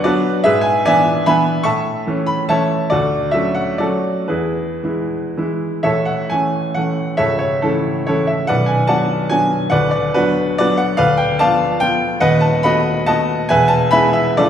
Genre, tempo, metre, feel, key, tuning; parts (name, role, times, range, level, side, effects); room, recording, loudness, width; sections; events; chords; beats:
classical, romantic triple-time dance for piano with dotted rhythms; 106-155 BPM; 3/4; rubato; A major; A4 = 440 Hz
bright baby grand piano; solo; 0.0-14.5 s; B0 to C#6; -14 LUFS; equal
wet recital hall reverb, RT60 1.6 s; heard from further back in the room; -14 LUFS; side -9 dB against mid
0.0-5.9 A section; 5.9-14.5 B section
0.5 E7/G#; 1.7 A; 2.9 Dmaj7; 4.3 E; 5.9 A; 7.2 A/C#; 8.5 Bm7; 9.7 Bm/D; 11.0 Bm7b5/D; 12.2 B7/D#; 13.5 E
0.06 | 0.46 0.86 1.27 | 1.66 2.08 2.50 | 2.91 3.33 3.80 | 4.30 4.84 5.38 | 5.87 6.32 6.77 | 7.19 7.63 8.08 | 8.49 8.90 9.31 | 9.73 10.15 10.58 | 10.99 11.40 11.82 | 12.21 12.64 13.07 | 13.48 13.91 14.37